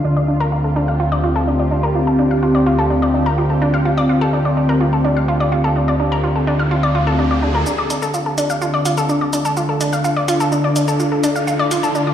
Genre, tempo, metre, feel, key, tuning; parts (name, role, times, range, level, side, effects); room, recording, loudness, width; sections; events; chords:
melodic techno; 126 BPM; 4/4; straight; D minor; A4 = 438 Hz
lush unison pad; sustained chords; 0.0-12.1 s; D3 to A5; -22 LUFS; right 1 dB; chorus, phaser
analog pluck; arpeggios; 0.0-12.1 s; D4 to F5; -19 LUFS; equal; chorus, dub echo
fat analog bass; bass; 0.0-7.6 s; D2; -18 LUFS; equal
ethereal airy pad; texture; 0.0-12.1 s; C4 to F5; -22 LUFS; left 1 dB; ensemble chorus, built-in reverb, phaser
riser; sound effects; 5.8-12.1 s; -28 LUFS; equal
electronic shaker and hi-hat; drums; 7.7-12.0 s; -27 LUFS; right 1 dB
moderate concert hall reverb, RT60 2.0 s; played on a big sound system in a bare room, stone room reverb; -14 LUFS; side -10 dB against mid
0.0-7.7 A section; 7.7-12.1 B section
filter sweep on synth arpeggio sound 0.0-7.7; riser 5.8-7.7, 7.7-12.1; build-up 7.7-12.1
0.0 Fsus2/D; 7.7 Dm